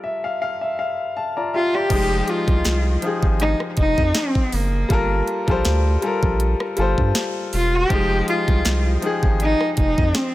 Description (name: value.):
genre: contemporary R&B.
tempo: 80 BPM.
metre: 4/4.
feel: swing 54% on 16ths.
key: unclear.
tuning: A4 = 440 Hz.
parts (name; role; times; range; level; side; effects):
clear baby grand piano; accompaniment; 0.0-10.3 s; F3 to Bb5; -23 LUFS; left 2 dB; none.
warm cello; melody; 1.6-10.3 s; Bb3 to G4; -22 LUFS; equal; none.
saturated sub bass; bass; 1.9-10.1 s; E1 to G2; -21 LUFS; equal; none.
trap drum kit; drums; 1.9-10.3 s; crash cymbal, hi-hat, kick drum, rim click, snare drum; -22 LUFS; equal; none.
room: little or no reverb.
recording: none.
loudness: -18 LUFS.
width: side -16 dB against mid.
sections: 0.0-1.9 A section; 1.9-10.3 B section.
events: grand piano fill 0.0-1.9.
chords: 0.0 Gm9; 1.9 Fm9; 4.9 Gm9; 7.9 Fm9.